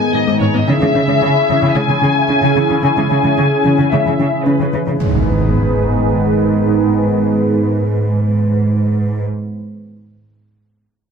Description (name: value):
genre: cinematic, hybrid orchestral and electronic film score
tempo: 111 BPM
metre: 4/4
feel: straight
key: G# minor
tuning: A4 = 445 Hz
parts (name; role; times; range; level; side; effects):
- rich symphonic violin section; melody; 0.0-9.2 s; B4 to G#5; -19 LUFS; left 6 dB; low-pass filter
- phased analog pad; sustained chords; 0.0-9.2 s; C#3 to G#4; -17 LUFS; right 1 dB; phaser, chorus, low-pass filter
- thumb-piano-like synth pluck; arpeggios; 0.1-5.0 s; C#3 to G#4; -20 LUFS; left 3 dB; chorus, low-pass filter, ping-pong delay
- rich symphonic cello section; bass; 0.1-9.2 s; G#2 to C#3; -16 LUFS; right 2 dB; none
- impact; sound effects; 5.0-7.2 s; none; -20 LUFS; equal; none
room: moderate recital hall reverb, RT60 1.5 s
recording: none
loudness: -12 LUFS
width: side -6 dB against mid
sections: 0.0-5.0 A section; 5.0-9.3 B section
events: filter sweep 0.0-5.0; impact 5.0-7.2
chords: 0.0 G#m; 0.7 C#m; 5.0 G#m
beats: 0.14 | 0.68 1.22 1.76 2.30 | 2.84 3.38 3.92 4.46 | 5.00 5.54 6.08 6.62 | 7.16 7.70 8.24 8.78